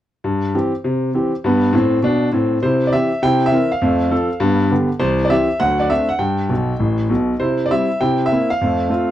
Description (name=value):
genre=jazz, stride piano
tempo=201 BPM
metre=4/4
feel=swing 66% on 8ths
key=C major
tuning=A4 = 440 Hz
part: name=clear concert grand piano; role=solo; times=0.2-9.1 s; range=A1 to G5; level=-15 LUFS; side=equal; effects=none
room=light reverb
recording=dry, close 1970s-style studio recording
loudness=-15 LUFS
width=side -12 dB against mid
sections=0.2-2.6 A section; 2.6-9.1 B section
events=grand piano fill 6.5-7.4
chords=0.2 C/G; 1.4 Gadd9; 2.6 C; 3.2 C7; 3.8 F; 4.4 G7; 5.0 C; 5.6 D7; 6.2 G; 7.4 C; 8.0 C7; 8.6 F